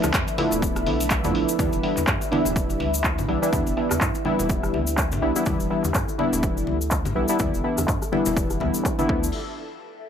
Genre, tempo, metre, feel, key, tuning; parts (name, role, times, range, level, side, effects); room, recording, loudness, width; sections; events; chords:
deep house; 124 BPM; 4/4; swing 57% on 16ths; A4 = 438 Hz
airy breathy pad; sustained chords; 0.0-9.3 s; F3 to E5; -31 LUFS; equal; chorus, phaser, sidechain pumping
warm analog keys; stabs; 0.0-9.3 s; E3 to E4; -24 LUFS; equal; chorus, sidechain pumping, low-pass filter, digital delay
warm sub bass; bass; 0.0-9.3 s; D1 to A2; -29 LUFS; equal; sidechain pumping
punchy analog drum machine; drums; 0.0-9.2 s; crash cymbal, handclaps, hi-hat, rim click; -29 LUFS; equal; low-pass filter on hats, low-pass filter on snare, low-pass filter on cymbals
cabasa; percussion; 0.0-9.3 s; -32 LUFS; left 5 dB
congas; percussion; 0.0-9.1 s; -34 LUFS; left 4 dB; sidechain pumping on perc
electronic kick drum; drums; 0.1-9.2 s; -27 LUFS; equal; overdrive
light reverb; -20 LUFS; side -8 dB against mid
0.0-9.3 A section
filter sweep on drum 0.0-9.3; filter sweep on analog synth pad 0.0-9.3
0.0 Dm69; 1.6 Em7; 9.1 Dm69; 9.3 N.C.